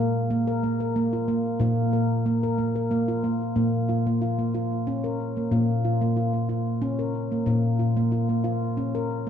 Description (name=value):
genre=world meditative, meditative tuned percussion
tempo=92 BPM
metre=3/4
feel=straight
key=Bb minor pentatonic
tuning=A4 = 435 Hz
part: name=handpan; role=solo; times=0.0-9.3 s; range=Bb2 to Bb4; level=-22 LUFS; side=equal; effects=diffuse ambient delay
room=wet echo chamber reverb, RT60 1.5 s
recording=cassette tape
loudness=-22 LUFS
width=side -8 dB against mid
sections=0.0-3.5 A section; 3.5-9.3 B section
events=none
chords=0.0 Bb5